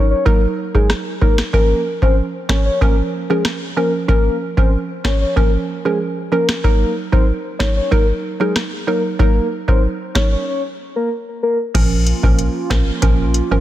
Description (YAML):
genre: dancehall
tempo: 94 BPM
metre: 4/4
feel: straight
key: Bb minor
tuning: A4 = 440 Hz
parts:
  - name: soft octave-layered synth lead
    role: melody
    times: 0.0-11.6 s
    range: Ab4 to Db5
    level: -20 LUFS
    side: left 2 dB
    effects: chorus, ping-pong delay
  - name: hollow square pluck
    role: accompaniment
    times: 0.0-13.6 s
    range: F3 to Bb4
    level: -21 LUFS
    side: right 5 dB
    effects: chorus
  - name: booming analog drum machine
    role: drums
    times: 0.3-13.5 s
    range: crash cymbal, hi-hat, kick drum, rim click, snare drum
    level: -16 LUFS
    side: equal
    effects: none
  - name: woody FM bass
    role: bass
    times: 11.7-13.6 s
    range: Ab1 to Bb1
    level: -17 LUFS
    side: equal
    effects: none
  - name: hollow soft pad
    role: sustained chords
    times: 11.8-13.6 s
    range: Bb3 to F4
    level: -25 LUFS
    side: right 2 dB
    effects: chorus, sidechain pumping
room: light reverb, digital ambience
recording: dense, heavily limited modern master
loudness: -15 LUFS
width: side -13 dB against mid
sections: 0.0-11.7 A section; 11.7-13.6 B section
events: break 10.5-11.7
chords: 0.0 Gb6; 1.5 Bbm; 6.6 Gb6; 11.7 Bbm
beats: 0.26 0.90 | 1.53 2.17 2.81 3.45 | 4.09 4.73 5.37 6.00 | 6.64 7.28 7.92 8.56 | 9.20 9.83 10.47 11.11 | 11.75 12.39 13.03